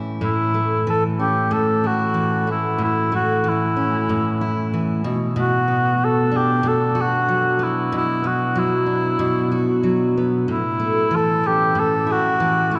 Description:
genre	pop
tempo	94 BPM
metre	4/4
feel	swing 60% on 16ths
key	unclear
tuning	A4 = 439 Hz
part	picked steel-string acoustic guitar	accompaniment	0.0-12.8 s	A2 to F#4	-23 LUFS	equal	none
part	mellow cor anglais	melody	0.2-12.8 s	E4 to A4	-23 LUFS	equal	none
room	wet cathedral reverb, RT60 4.8 s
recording	recorded in a church or concert hall, nothing above 10.6 kHz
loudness	-20 LUFS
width	mono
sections	0.2-12.8 A section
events	none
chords	0.2 A; 5.0 Bm; 10.5 A

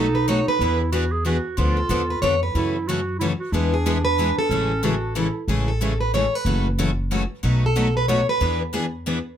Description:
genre	acoustic string swing (jazz manouche)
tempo	184 BPM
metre	3/4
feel	swing 61% on 8ths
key	A major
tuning	A4 = 438 Hz
part	picked plugged-in steel-string acoustic guitar	melody	0.0-8.6 s	G#4 to C#5	-24 LUFS	right 1 dB	none
part	breathy clarinet	second line	0.0-5.5 s	C#4 to G#4	-26 LUFS	right 3 dB	none
part	picked steel-string acoustic guitar	accompaniment	0.0-9.2 s	B2 to A4	-26 LUFS	left 5 dB	none
part	picked steel-string acoustic guitar	accompaniment	0.0-9.2 s	B2 to B4	-29 LUFS	right 4 dB	none
part	upright bass	bass	0.0-9.2 s	F#1 to F#2	-24 LUFS	equal	none
room	light reverb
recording	close, detailed microphones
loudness	-19 LUFS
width	side -9 dB against mid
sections	0.0-5.5 A section; 5.5-9.4 A section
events	none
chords	0.0 B7; 0.6 E7; 1.6 Dm6; 2.5 F#m7; 3.5 E; 4.5 Amaj7; 6.5 F#m7; 7.4 B7; 8.4 E7

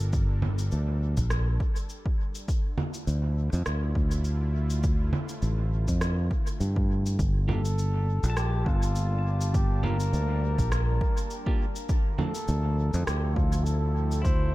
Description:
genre	ambient dub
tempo	102 BPM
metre	4/4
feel	swing 55% on 16ths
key	G dorian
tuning	A4 = 440 Hz
part	warm analog pad	sustained chords	0.0-14.5 s	D3 to A5	-40 LUFS	left 1 dB	chorus, tremolo
part	fingered electric bass	bass	0.0-14.5 s	G1 to G2	-25 LUFS	equal	none
part	electronic kick drum	drums	0.1-14.4 s	none	-27 LUFS	equal	overdrive
part	electronic shaker, congas and rim click	drums	0.1-14.4 s	none	-35 LUFS	right 1 dB	dub echo
part	trumpet with bucket mute	melody	7.5-14.5 s	F4 to C5	-35 LUFS	equal	dub echo
part	clean electric guitar	stabs	7.5-12.3 s	F3 to G4	-39 LUFS	right 2 dB	dub echo
part	pedal steel guitar	arpeggios	8.3-9.7, 14.2-14.5 s	E4 to A5	-44 LUFS	left 4 dB	vintage 12-bit sampler grit, dub echo
room	little or no reverb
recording	none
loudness	-24 LUFS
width	side -18 dB against mid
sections	0.0-14.5 A section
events	fade-in on analog synth pad 0.0-14.5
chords	0.0 Gm; 2.5 Dm; 7.2 Gm7; 11.9 Dm

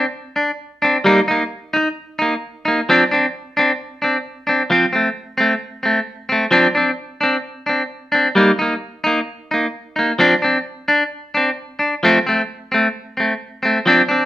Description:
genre	highlife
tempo	131 BPM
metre	4/4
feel	straight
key	unclear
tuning	A4 = 440 Hz
part	clean electric guitar	solo	0.0-14.2 s	F3 to Eb4	-14 LUFS	equal	none
room	moderate studio reverb, RT60 0.8 s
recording	band playing live in one room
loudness	-15 LUFS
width	side -13 dB against mid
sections	0.0-6.5 A section; 6.5-14.3 B section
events	none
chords	0.0 D7(no3); 1.1 Eb5; 2.9 D7(no3); 4.7 F (rootless); 6.5 D7(no3); 8.4 Eb5; 10.2 D7(no3); 12.0 F (rootless)

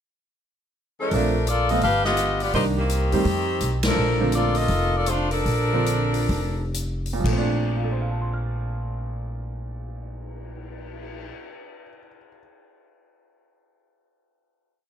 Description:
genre	jazz, big band swing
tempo	117-169 BPM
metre	4/4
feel	swing 63% on 8ths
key	Bb major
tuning	A4 = 440 Hz
part	edgy saxophone section	melody	1.0-6.7 s	Eb3 to F5	-23 LUFS	left 1 dB	none
part	clear baby grand piano	accompaniment	1.1-12.4 s	Bb2 to F6	-27 LUFS	right 3 dB	none
part	upright bass	bass	1.1-11.3 s	F1 to F2	-26 LUFS	equal	none
part	swinging big-band drum kit	drums	1.1-11.2 s	crash cymbal, cymbal swell, hi-hat, kick drum, ride cymbal, snare drum	-32 LUFS	left 1 dB	none
room	light reverb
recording	none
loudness	-21 LUFS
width	side -9 dB against mid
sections	0.0-1.1 pickup bar; 1.1-7.3 A section; 7.3-11.3 final chord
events	band accent 3.8; slowing down 4.0-7.3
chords	0.0 N.C.; 1.1 Bbmaj7; 1.8 G7; 2.5 Cm7; 3.3 F7(no3); 4.0 Bbmaj7

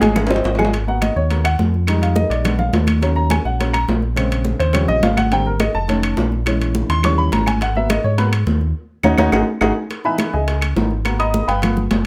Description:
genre	Afro-Cuban jazz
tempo	209 BPM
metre	4/4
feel	straight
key	G# minor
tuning	A4 = 443 Hz
part	warm upright piano	accompaniment	0.0-11.8 s	C#3 to D#6	-22 LUFS	equal	none
part	sub bass with octave	bass	0.0-12.1 s	E#1 to G#2	-22 LUFS	equal	none
part	bongos	percussion	0.0-12.1 s	none	-30 LUFS	equal	none
part	congas	percussion	0.0-12.1 s	none	-24 LUFS	equal	none
part	timbales	percussion	0.0-12.1 s	none	-29 LUFS	equal	none
part	claves	percussion	0.2-11.8 s	none	-30 LUFS	equal	none
room	moderate studio reverb, RT60 0.7 s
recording	none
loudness	-18 LUFS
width	mono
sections	0.7-9.9 A section; 9.9-12.1 A section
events	drum fill 0.0-0.7, 9.0-9.9; upright piano solo 0.7-12.1; band accent 8.8-9.9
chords	0.2 G#; 0.7 G#m9; 1.9 Fm7; 2.4 A#7b9; 3.0 D#m7; 4.2 A#m7; 4.7 D#13; 5.3 G#maj9#11; 5.9 F7b13; 6.5 A#m7b5; 7.0 D#7b9; 7.6 G#m9; 8.8 D#m7; 9.3 G#5; 9.9 C#m9; 11.1 G#m9

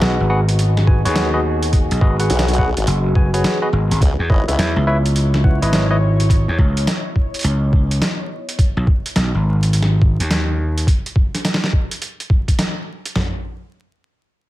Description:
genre	glitch hop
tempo	105 BPM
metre	4/4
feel	swing 64% on 16ths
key	unclear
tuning	A4 = 441 Hz
part	barky tine electric piano	stabs	0.0-6.0 s	E4 to G#5	-22 LUFS	equal	sidechain pumping, tape echo
part	gritty slap bass	bass	0.0-10.9 s	F#1 to E2	-16 LUFS	equal	overdrive
part	boom bap sampler-style drum kit	drums	0.0-13.1 s	hi-hat, snare drum	-22 LUFS	equal	none
part	warbly tape-like pad	texture	0.0-8.6 s	B3 to D#5	-27 LUFS	left 1 dB	chorus, built-in reverb, sidechain pumping
part	boom bap sampler-style drum kit	drums	0.9-13.3 s	kick drum, snare drum, toms	-15 LUFS	equal	none
part	formant-sweep wobble bass	bass	2.3-4.6 s	G#1 to C#2	-18 LUFS	equal	chorus
room	little or no reverb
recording	vinyl crackle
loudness	-15 LUFS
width	side -16 dB against mid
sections	0.0-13.2 A section; 13.2-14.5 B section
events	drop 0.0-13.2; band accent 12.6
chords	0.0 G#m7; 4.0 C#m9; 8.6 G#5; 13.2 N.C.

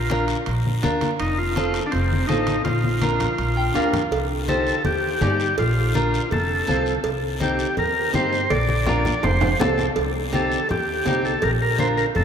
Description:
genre	latin, cumbia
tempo	164 BPM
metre	4/4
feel	straight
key	Bb major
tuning	A4 = 438 Hz
part	combo organ	melody	0.0-12.2 s	C4 to D5	-24 LUFS	left 1 dB	none
part	upright bass	bass	0.0-12.2 s	F1 to G2	-25 LUFS	equal	none
part	clean electric guitar	accompaniment	0.1-12.0 s	C4 to G5	-25 LUFS	equal	none
part	congas	percussion	0.1-12.2 s	none	-28 LUFS	left 3 dB	none
part	guiro	percussion	0.1-12.2 s	none	-38 LUFS	left 8 dB	none
part	timbales and cowbell	percussion	0.1-12.2 s	none	-30 LUFS	right 5 dB	none
room	wet cathedral reverb, RT60 5.4 s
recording	in a vast, echoing space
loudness	-19 LUFS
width	side -7 dB against mid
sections	0.0-4.1 A section; 4.1-12.2 B section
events	drum fill 2.7-4.1, 8.5-10.0; clean electric guitar fill 3.4-4.1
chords	0.0 Bb; 1.2 F; 2.7 Bb; 4.1 Cmadd9; 5.6 Bb; 6.3 F; 7.0 Cm; 8.5 Bb; 9.2 F; 10.0 Cm; 11.4 Bb

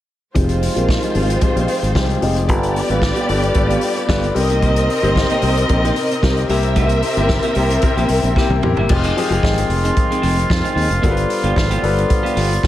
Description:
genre	disco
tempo	112 BPM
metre	4/4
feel	straight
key	F minor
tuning	A4 = 440 Hz
part	clear concert grand piano	accompaniment	0.3-12.7 s	C3 to C5	-21 LUFS	left 4 dB	low-pass filter
part	dark symphonic string section	second line	0.4-8.9 s	Ab3 to E5	-20 LUFS	right 1 dB	none
part	electric guitar at the edge of break-up	accompaniment	0.4-12.5 s	Bb3 to Bb4	-26 LUFS	right 3 dB	low-pass filter
part	fingered electric bass	bass	0.4-12.7 s	F1 to G2	-19 LUFS	equal	none
part	vintage drum kit	drums	0.4-12.7 s	crash cymbal, hi-hat, kick drum, snare drum, toms	-20 LUFS	equal	none
part	warm woodwind section	sustained chords	8.9-12.7 s	D3 to F4	-21 LUFS	right 1 dB	none
room	light reverb, studio reverb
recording	none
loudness	-14 LUFS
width	side -13 dB against mid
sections	0.4-8.9 A section; 8.9-12.7 B section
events	filter sweep 0.4-8.9; drum fill 8.4-8.9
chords	0.4 Fm7; 2.5 G7; 4.4 Cm7; 6.5 C7; 8.9 Fm7; 11.0 G7

